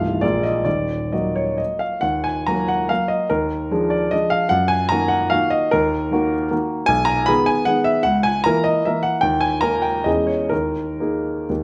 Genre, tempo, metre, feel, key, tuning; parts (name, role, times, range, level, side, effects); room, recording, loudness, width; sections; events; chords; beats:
classical, romantic triple-time dance for piano with dotted rhythms; 118-163 BPM; 3/4; rubato; Eb minor; A4 = 439 Hz
warm grand piano; solo; 0.0-11.6 s; C1 to B5; -20 LUFS; equal
moderate recital hall reverb, RT60 1.6 s; close, detailed microphones; -20 LUFS; mono
0.0-2.0 A section; 2.0-11.6 B section
0.2 Bb7; 0.7 Ebm; 3.3 Bb7/Eb; 4.5 Ebm/Gb; 5.7 Ebm; 6.9 G#m/B; 8.1 A#dim/C#; 9.2 D#5; 10.1 C#m/E; 10.5 D#sus4
0.23 | 0.66 1.13 1.59 | 2.04 2.48 2.90 | 3.31 3.72 4.13 | 4.52 4.92 5.33 | 5.73 6.13 6.52 | 6.89 7.29 7.68 | 8.05 8.44 8.85 | 9.22 9.63 10.07 | 10.52 11.01 11.49